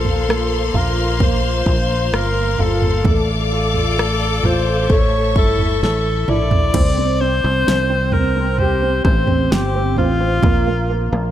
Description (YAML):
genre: pop ballad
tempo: 65 BPM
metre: 4/4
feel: straight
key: unclear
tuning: A4 = 440 Hz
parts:
  - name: clear alto saxophone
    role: melody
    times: 0.0-11.3 s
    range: F4 to D5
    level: -21 LUFS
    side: left 3 dB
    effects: ping-pong delay
  - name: warm concert grand piano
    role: accompaniment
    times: 0.0-11.3 s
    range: A3 to A4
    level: -22 LUFS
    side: right 3 dB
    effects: analog chorus
  - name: bright studio string section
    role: sustained chords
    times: 0.0-6.7 s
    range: Bb3 to D6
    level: -24 LUFS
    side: left 3 dB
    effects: none
  - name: fingered electric bass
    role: bass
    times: 0.0-11.3 s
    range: G1 to C2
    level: -20 LUFS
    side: equal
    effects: none
  - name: pop drum kit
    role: drums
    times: 0.1-10.7 s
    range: crash cymbal, kick drum, rim click, snare drum, toms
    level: -19 LUFS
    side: equal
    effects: none
room: light reverb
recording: none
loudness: -14 LUFS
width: side -11 dB against mid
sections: 0.0-6.7 A section; 6.7-11.3 B section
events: drum fill 5.8-6.7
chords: 0.0 Bbsus2; 3.1 Dm/A; 4.9 A; 6.7 C5; 10.4 Bb5